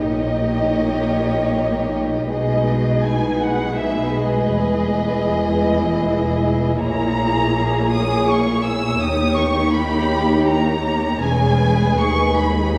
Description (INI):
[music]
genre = classical, slow romantic movement for string orchestra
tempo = 80 BPM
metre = 3/4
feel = rubato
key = G# minor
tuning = A4 = 440 Hz
[part]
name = warm studio violin section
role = melody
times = 0.0-12.8 s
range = D#5 to E6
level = -26 LUFS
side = equal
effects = none
[part]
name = rich studio violin section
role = second line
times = 0.0-12.7 s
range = G4 to C#5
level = -26 LUFS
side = equal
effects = none
[part]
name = dark studio viola section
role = accompaniment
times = 0.0-12.8 s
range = G#3 to E4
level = -24 LUFS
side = equal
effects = none
[part]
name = clear studio double bass section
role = bass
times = 0.0-12.8 s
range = E1 to D#2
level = -26 LUFS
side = equal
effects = none
[part]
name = warm studio cello section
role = bass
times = 0.0-12.8 s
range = D#2 to B2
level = -27 LUFS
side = equal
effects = none
[sound]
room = wet scoring stage reverb, RT60 1.6 s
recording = heard from further back in the room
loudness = -19 LUFS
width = mono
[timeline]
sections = 0.0-12.8 A section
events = none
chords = 0.0 D#7/A#; 2.3 G#m/B; 4.5 Emaj7; 6.8 A#m7b5; 9.0 D#7; 11.2 E6; 12.0 G#m/D#